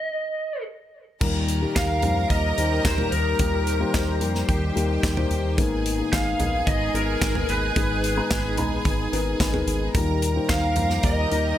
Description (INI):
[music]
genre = piano-driven pop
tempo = 110 BPM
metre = 4/4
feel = straight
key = Eb major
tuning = A4 = 441 Hz
[part]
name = lead guitar through a small cranked amp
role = melody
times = 0.0-11.6 s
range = Bb4 to F5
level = -27 LUFS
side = right 1 dB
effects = overdrive
[part]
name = bright studio violin section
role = second line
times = 1.2-11.6 s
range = G4 to Bb5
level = -31 LUFS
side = right 2 dB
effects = none
[part]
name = dark upright piano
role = accompaniment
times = 1.2-11.6 s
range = Ab2 to Cb6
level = -27 LUFS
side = left 4 dB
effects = none
[part]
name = sweeping resonant pad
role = sustained chords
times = 1.2-11.6 s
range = Eb3 to C5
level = -34 LUFS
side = right 1 dB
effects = chorus
[part]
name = round analog bass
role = bass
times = 1.2-11.5 s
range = Ab1 to F2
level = -26 LUFS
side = equal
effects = none
[part]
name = modern studio drum kit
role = drums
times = 1.2-11.4 s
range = crash cymbal, handclaps, hi-hat, kick drum, snare drum, toms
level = -26 LUFS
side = equal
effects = none
[sound]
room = light reverb, small room ambience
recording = none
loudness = -21 LUFS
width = side -12 dB against mid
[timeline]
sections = 0.0-1.2 A section; 1.2-11.6 B section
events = stop 0.0-1.2; upright piano fill 9.1-9.9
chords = 0.0 N.C.; 1.2 Eb; 5.6 Abmadd9; 9.9 Eb